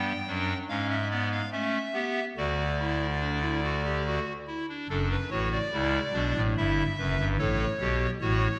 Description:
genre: classical, baroque-style 3-part fugue for pipe organ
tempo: 72 BPM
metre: 3/4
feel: straight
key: D major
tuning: A4 = 437 Hz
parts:
  - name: pipe organ, clarinet reed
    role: solo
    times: 0.0-8.6 s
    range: F#1 to G5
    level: -29 LUFS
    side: equal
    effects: none
room: wet recital hall reverb, RT60 1.7 s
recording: none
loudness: -29 LUFS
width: mono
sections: 0.0-4.9 A section; 4.9-8.6 B section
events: none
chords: 0.0 Gmaj7; 0.7 G#dim7; 1.5 A7; 2.4 D; 4.9 D/F#; 6.6 Em/G; 7.4 A7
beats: 0.70 1.53 | 2.37 3.21 4.06 | 4.91 5.74 6.57 | 7.40 8.23

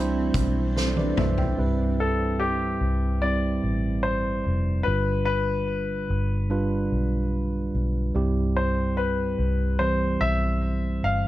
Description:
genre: pop ballad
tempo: 73 BPM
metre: 4/4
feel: straight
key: C major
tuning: A4 = 438 Hz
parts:
  - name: bright tine electric piano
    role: accompaniment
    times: 0.0-11.3 s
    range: G2 to G5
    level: -27 LUFS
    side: right 3 dB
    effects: none
  - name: granular cloud pad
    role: sustained chords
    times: 0.0-1.6 s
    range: E3 to D4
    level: -35 LUFS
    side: left 2 dB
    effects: built-in reverb
  - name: vintage muted fingered electric bass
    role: bass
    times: 0.0-11.3 s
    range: F1 to C2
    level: -26 LUFS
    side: equal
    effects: none
  - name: loose indie drum kit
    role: drums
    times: 0.3-1.6 s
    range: hi-hat, kick drum, snare drum, toms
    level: -27 LUFS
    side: equal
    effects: none
  - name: clear baby grand piano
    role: melody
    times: 2.0-11.3 s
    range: G4 to F5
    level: -27 LUFS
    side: left 3 dB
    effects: tape echo
room: small room ambience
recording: dark, warm production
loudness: -22 LUFS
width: side -15 dB against mid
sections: 0.0-1.6 A section; 1.6-11.3 B section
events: drum fill 0.8-1.6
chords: 0.0 Cadd9; 1.6 Cmaj7; 4.9 G7; 8.2 Cmaj7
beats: 0.76 | 1.58 2.40 3.22 4.04 | 4.87 5.69 6.51 7.33 | 8.15 8.97 9.80 10.62

